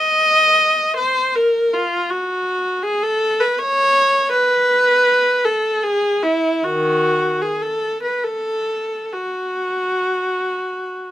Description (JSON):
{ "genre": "classical, free, expressive piece for unaccompanied viola", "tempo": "61-83 BPM", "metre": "3/4", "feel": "rubato", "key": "unclear", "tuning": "A4 = 440 Hz", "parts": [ { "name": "rich viola", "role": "solo", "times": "0.0-11.1 s", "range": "D#3 to Eb5", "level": "-16 LUFS", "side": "equal", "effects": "none" } ], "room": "light reverb", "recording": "none", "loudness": "-16 LUFS", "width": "side -13 dB against mid", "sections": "0.0-11.1 A section", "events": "none", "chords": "none" }